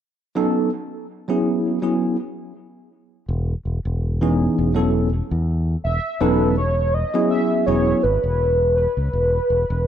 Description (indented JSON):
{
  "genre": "vaporwave",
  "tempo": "82 BPM",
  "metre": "4/4",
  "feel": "swing 54% on 16ths",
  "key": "E major",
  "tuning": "A4 = 436 Hz",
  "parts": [
    { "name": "bell-like tine electric piano", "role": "accompaniment", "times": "0.4-8.0 s", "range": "E3 to A4", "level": "-20 LUFS", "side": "equal", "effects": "medium stereo tremolo, wide subtle chorus, plate reverb, analog delay" },
    { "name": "fingered electric bass", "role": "bass", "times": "3.3-9.9 s", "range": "E1 to E2", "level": "-21 LUFS", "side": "equal", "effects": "none" },
    { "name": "warm velvety synth lead", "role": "melody", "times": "5.8-9.9 s", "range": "B4 to E5", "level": "-20 LUFS", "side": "right 1 dB", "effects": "chorus, cassette tape, plate reverb, tape echo" }
  ],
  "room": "moderate studio reverb, RT60 0.6 s",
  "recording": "rough home demo mix",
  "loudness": "-18 LUFS",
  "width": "side -9 dB against mid",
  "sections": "0.4-6.2 A section; 6.2-9.9 B section",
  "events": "none",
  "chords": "0.4 B9; 1.5 E69; 3.3 C#m9/E; 4.7 A69/E; 6.2 B9/E; 7.3 E69; 9.1 C#m7/E (rootless)"
}